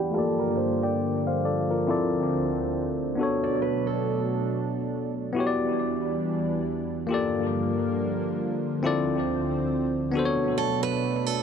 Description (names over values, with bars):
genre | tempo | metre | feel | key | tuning
R&B | 69 BPM | 4/4 | swing 58% on 16ths | unclear | A4 = 439 Hz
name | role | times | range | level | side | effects
bell-like tine electric piano | accompaniment | 0.0-11.4 s | A3 to D6 | -26 LUFS | left 2 dB | low-pass filter, analog delay
lush unison pad | sustained chords | 0.0-11.4 s | D2 to D4 | -29 LUFS | right 2 dB | chorus, low-pass filter
picked steel-string acoustic guitar | arpeggios | 0.0-5.1, 10.6-11.4 s | G4 to D5 | -31 LUFS | right 12 dB | low-pass filter, analog delay
room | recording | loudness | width
light reverb | echo-heavy mix | -24 LUFS | side -7 dB against mid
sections
0.0-11.4 A section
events
filter sweep 0.0-11.4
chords
0.1 Gm7; 1.9 Dm7; 3.2 Bm7; 5.4 Em7; 7.1 Gm7; 8.8 Dm7; 10.1 Bm7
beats
0.14 1.01 | 1.88 2.75 3.62 4.49 | 5.36 6.23 7.10 7.97 | 8.84 9.71 10.58